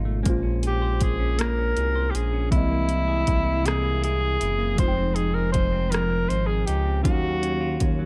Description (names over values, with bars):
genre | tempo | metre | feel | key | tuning
slow six-eight R&B | 53 BPM (dotted quarters) | 6/8 | straight | unclear | A4 = 440 Hz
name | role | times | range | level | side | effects
semi-hollow electric guitar | second line | 0.0-8.1 s | B2 to C5 | -34 LUFS | equal | none
tine electric piano | accompaniment | 0.0-8.1 s | D#3 to G5 | -34 LUFS | equal | phaser
smooth synth bass | bass | 0.0-8.1 s | F1 to Eb2 | -28 LUFS | equal | none
smooth R&B drum kit | drums | 0.3-8.0 s | hi-hat, kick drum, rim click | -28 LUFS | equal | overdrive
breathy tenor saxophone | melody | 0.7-7.9 s | E4 to C5 | -29 LUFS | equal | none
room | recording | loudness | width
little or no reverb | dark, warm production | -23 LUFS | mono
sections
0.0-8.1 A section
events
none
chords
0.3 Bbm9; 2.5 C7alt; 4.8 Fm7; 7.1 Ebm9